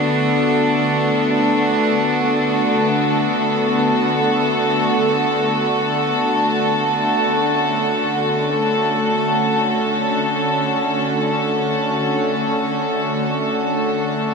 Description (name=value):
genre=ambient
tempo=free time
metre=none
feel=none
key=D major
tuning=A4 = 440 Hz
part: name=rich cello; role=melody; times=0.0-4.6 s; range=D4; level=-23 LUFS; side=equal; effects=ping-pong delay
part: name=warm studio string section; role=sustained chords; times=0.0-14.3 s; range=D3 to A4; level=-17 LUFS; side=equal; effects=none
part: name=organ-like drone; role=drone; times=0.0-14.3 s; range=D3 to A3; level=-26 LUFS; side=equal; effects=ensemble chorus, built-in reverb
room=wet huge ambient reverb, RT60 8.8 s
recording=none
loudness=-16 LUFS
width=side -4 dB against mid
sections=0.0-5.7 A section; 5.7-14.3 B section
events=none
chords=0.0 Bm7/D; 5.7 Dmaj7